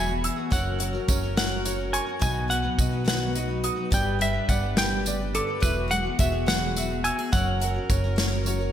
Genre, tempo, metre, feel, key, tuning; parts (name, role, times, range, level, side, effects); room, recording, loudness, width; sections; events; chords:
indie folk with a building arrangement; 70 BPM (dotted quarters); 6/8; straight; A4 = 440 Hz
semi-hollow electric guitar; melody; 0.0-8.7 s; A4 to G#5; -29 LUFS; right 1 dB; harmonic tremolo, slapback echo
fingerpicked steel-string acoustic guitar; accompaniment; 0.0-8.7 s; F#2 to A#4; -34 LUFS; left 3 dB; slapback echo
picked twelve-string acoustic guitar; accompaniment; 0.0-8.7 s; B2 to B4; -33 LUFS; left 5 dB; wide subtle chorus, slapback echo
clear brass ensemble; sustained chords; 0.0-8.7 s; F#3 to B4; -38 LUFS; right 2 dB
clear upright piano; arpeggios; 0.0-8.7 s; C#5 to E6; -35 LUFS; right 5 dB; slapback echo
upright bass; bass; 0.0-8.7 s; E1 to B1; -29 LUFS; equal
natural country drum kit; drums; 0.2-8.6 s; hi-hat, kick drum, snare drum; -27 LUFS; equal
tambourine; percussion; 0.5-8.7 s; -38 LUFS; right 9 dB
moderate lush hall reverb, RT60 2.3 s; big arena sound; -22 LUFS; side -10 dB against mid
0.0-8.7 A section
0.0 Eadd9; 0.5 F#; 2.2 B; 3.9 G; 5.6 Eadd9; 7.3 F#